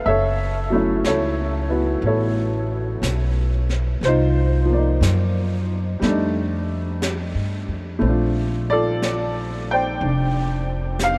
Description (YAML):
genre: jazz ballad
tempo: 60 BPM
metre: 4/4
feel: swing 68% on 8ths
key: unclear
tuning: A4 = 440 Hz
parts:
  - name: warm upright piano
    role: accompaniment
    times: 0.0-11.2 s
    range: F3 to G5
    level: -24 LUFS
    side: equal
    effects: none
  - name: upright bass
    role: bass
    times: 0.1-11.2 s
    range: F1 to G2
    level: -24 LUFS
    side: equal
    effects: none
  - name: jazz brush drum kit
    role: drums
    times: 0.1-11.2 s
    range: brushed snare drum, hi-hat, snare drum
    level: -34 LUFS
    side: equal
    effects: none
room: moderate huge ambient reverb, RT60 8.2 s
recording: in a vast, echoing space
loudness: -21 LUFS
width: mono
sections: 0.0-11.2 A section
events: none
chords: 0.0 F#m7; 4.0 Cm11; 6.0 F13; 8.0 Bbmaj9